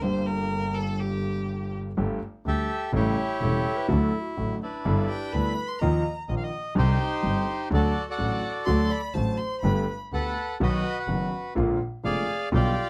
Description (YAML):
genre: tango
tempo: 125 BPM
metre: 4/4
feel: rubato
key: G major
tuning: A4 = 437 Hz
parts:
  - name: clear violin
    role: second line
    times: 0.0-1.7, 5.1-10.0 s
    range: G4 to C6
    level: -36 LUFS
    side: equal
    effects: none
  - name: warm concert grand piano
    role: accompaniment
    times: 0.0-12.7 s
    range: E1 to G4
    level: -30 LUFS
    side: equal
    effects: none
  - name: rich double bass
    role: bass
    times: 0.0-12.7 s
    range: E1 to Eb2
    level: -30 LUFS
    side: equal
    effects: none
  - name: bandoneon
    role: melody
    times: 2.5-12.9 s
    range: D4 to F#5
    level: -31 LUFS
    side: equal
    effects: none
  - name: dark clarinet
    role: second line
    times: 3.4-10.0 s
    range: F#4 to Eb5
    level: -36 LUFS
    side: equal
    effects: none
room: little or no reverb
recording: close, detailed microphones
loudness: -26 LUFS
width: mono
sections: 0.0-2.0 A section; 2.0-12.9 B section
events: violin solo 0.0-2.0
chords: 0.0 Gm; 2.0 Gsus2; 2.9 A7; 3.9 D; 4.9 G6; 5.8 Ebsus2; 6.8 Cmadd9; 7.7 D; 9.6 Gadd9; 10.6 B; 11.6 Bb7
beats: | 0.04 0.52 1.00 1.49 | 1.97 2.46 2.94 3.42 | 3.90 4.38 4.86 5.33 | 5.81 6.29 6.76 7.24 | 7.72 8.20 8.68 9.16 | 9.65 10.13 10.61 11.09 | 11.57 12.04 12.52